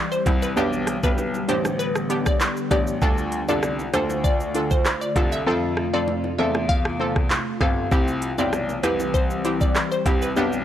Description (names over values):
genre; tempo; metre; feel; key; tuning
dancehall; 98 BPM; 4/4; straight; unclear; A4 = 439 Hz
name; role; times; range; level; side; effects
glassy FM pad; sustained chords; 0.0-10.6 s; C3 to G4; -29 LUFS; left 1 dB; ensemble chorus, built-in reverb, sidechain pumping
glassy wavetable pluck; melody; 0.1-10.3 s; B4 to F5; -27 LUFS; left 1 dB; chorus, analog delay
island pop drum kit; drums; 0.1-10.6 s; handclaps, hi-hat, kick drum, rim click, shaker; -23 LUFS; equal; none
synth brass stab; accompaniment; 0.3-10.6 s; G3 to A4; -26 LUFS; equal; chorus
clear baby grand piano; bass; 0.3-10.6 s; G1 to F2; -27 LUFS; left 1 dB; none
bongos; percussion; 0.3-10.2 s; none; -36 LUFS; right 1 dB; none
room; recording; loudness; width
little or no reverb; dry, gritty hardware recording; -20 LUFS; side -11 dB against mid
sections
0.0-10.6 A section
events
hi-hats muted 5.5-7.9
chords
0.0 C; 0.6 G; 3.0 Dm; 5.5 F; 7.9 C